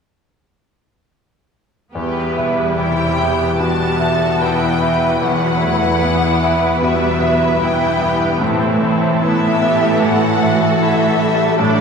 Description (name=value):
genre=cinematic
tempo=75 BPM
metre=4/4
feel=rubato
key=E minor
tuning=A4 = 440 Hz
part: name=rich studio violin section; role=second line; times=1.9-11.8 s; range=E4 to B4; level=-21 LUFS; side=left 2 dB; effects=none
part: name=clear studio viola section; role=accompaniment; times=1.9-11.8 s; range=C3 to D4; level=-21 LUFS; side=right 2 dB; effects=none
part: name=rich studio cello section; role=bass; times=1.9-11.8 s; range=E2 to A2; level=-21 LUFS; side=right 1 dB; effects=none
part: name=bright grand piano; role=accompaniment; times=2.0-11.8 s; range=E2 to E5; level=-19 LUFS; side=equal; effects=none
part: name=concert harp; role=arpeggios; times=2.0-11.8 s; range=E2 to E5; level=-24 LUFS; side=left 2 dB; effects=none
part: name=rich studio violin section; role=melody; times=2.8-11.8 s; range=D5 to A5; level=-22 LUFS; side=left 3 dB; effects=none
room=wet concert hall reverb, RT60 2.2 s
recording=heard from further back in the room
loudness=-13 LUFS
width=side -5 dB against mid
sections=2.0-11.8 A section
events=none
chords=2.0 Em; 8.4 Am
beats=| 1.96 2.78 3.59 4.40 | 5.21 6.01 6.81 7.61 | 8.41 9.22 10.02 10.81 | 11.59